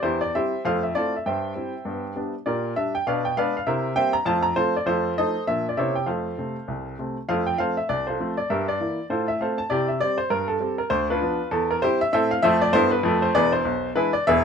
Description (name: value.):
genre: jazz, stride piano.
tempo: 199 BPM.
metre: 4/4.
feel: swing 60% on 8ths.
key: F major.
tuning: A4 = 440 Hz.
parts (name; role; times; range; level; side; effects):
clear upright piano; solo; 0.0-14.4 s; E1 to Bb5; -21 LUFS; equal; none.
room: light reverb.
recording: minimal, uncompressed stereo recording.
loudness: -21 LUFS.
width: side -6 dB against mid.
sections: 0.0-7.3 A section; 7.3-14.4 B section.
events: none.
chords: 0.0 C/E; 0.7 Fmaj7; 1.3 C/G; 1.9 G; 2.5 Gm/Bb; 3.1 Bdim7; 3.7 C7; 4.3 F; 4.9 F7; 5.5 Bb; 5.8 C7b9; 6.1 F; 8.5 Edim/G; 9.1 F/A; 9.7 C; 10.9 Bdim/D; 11.5 C/E; 12.1 Am; 13.3 E7.